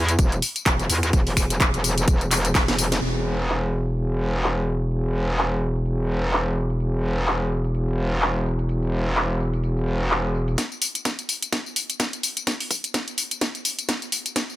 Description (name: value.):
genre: bass house.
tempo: 127 BPM.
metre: 4/4.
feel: swing 57% on 16ths.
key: unclear.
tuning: A4 = 442 Hz.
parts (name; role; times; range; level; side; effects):
metallic wobble bass; bass; 0.0-10.6 s; E1 to E2; -22 LUFS; equal; distortion, chorus, overdrive, sidechain pumping.
garage drum kit; drums; 0.1-14.6 s; finger snaps, handclaps, hi-hat, snare drum, tambourine; -24 LUFS; left 1 dB; low-pass filter on perc, low-pass filter on hats, low-pass filter on snare.
electronic kick drum; drums; 0.2-2.7, 10.6-14.5 s; none; -22 LUFS; equal; high-pass filter on kick.
room: little or no reverb.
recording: none.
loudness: -21 LUFS.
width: side -15 dB against mid.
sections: 0.0-3.0 A section; 3.0-10.6 B section; 10.6-14.6 C section.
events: drop 0.0-3.0; drum fill 2.5-3.0, 10.6-14.6; band accent 2.9; build-up 10.6-14.6.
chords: none.